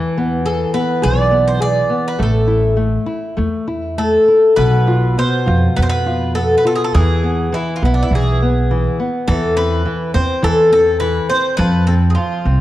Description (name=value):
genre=fado-style ballad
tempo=103 BPM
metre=4/4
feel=rubato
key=A harmonic minor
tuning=A4 = 440 Hz
part: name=nylon-string guitar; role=accompaniment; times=0.0-12.6 s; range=Cb3 to G#4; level=-19 LUFS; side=left 1 dB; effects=none
part: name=upright bass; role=bass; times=0.0-12.6 s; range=A1 to F2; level=-16 LUFS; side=right 1 dB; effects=tube saturation
part: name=Irish bouzouki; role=melody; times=0.5-12.6 s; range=D4 to D5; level=-16 LUFS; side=left 1 dB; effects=none
room=light reverb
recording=worn, warbling old tape, cassette tape, warbly pitch drift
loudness=-13 LUFS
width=side -14 dB against mid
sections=0.0-4.6 A section; 4.6-12.6 B section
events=none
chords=0.0 E; 2.2 A5; 4.6 F(b5, no3)/Cb; 6.9 E; 9.3 Amadd9/E; 11.6 F5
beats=0.46 1.04 1.62 | 2.20 2.78 3.37 3.97 | 4.57 5.17 5.77 6.36 | 6.94 7.53 8.12 8.70 | 9.27 9.85 10.43 11.01 | 11.58 12.17